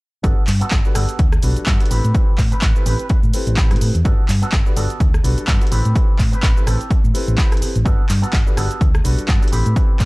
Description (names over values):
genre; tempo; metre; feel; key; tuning
filtered disco house; 126 BPM; 4/4; swing 57% on 16ths; G major; A4 = 440 Hz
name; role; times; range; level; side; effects
warm grand piano; accompaniment; 0.2-9.9 s; G3 to B4; -28 LUFS; equal; phaser, vintage 12-bit sampler grit, sidechain pumping, low-pass filter
electric guitar with an envelope filter; riff; 0.2-10.0 s; B3 to B4; -29 LUFS; right 1 dB; sidechain pumping, low-pass filter
hollow-body short-scale fingered electric bass; bass; 0.2-10.1 s; G1 to A2; -19 LUFS; equal; sidechain pumping, low-pass filter
electronic kick drum; drums; 0.2-10.1 s; none; -16 LUFS; equal; overdrive
punchy analog drum machine; drums; 0.2-10.1 s; handclaps, hi-hat, rim click, shaker; -26 LUFS; equal; overdrive, sidechain pumping on hats, sidechain pumping on perc
bright trumpet section; melody; 2.5-3.2, 6.3-6.8 s; B4; -34 LUFS; right 1 dB; sidechain pumping, low-pass filter
room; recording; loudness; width
little or no reverb; dry, gritty hardware recording, cassette tape; -14 LUFS; side -23 dB against mid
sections
0.2-10.1 A section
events
none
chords
0.2 Gmaj9; 1.9 Am9; 4.0 Gmaj9; 5.7 Am9; 7.9 Gmaj9; 9.5 Am9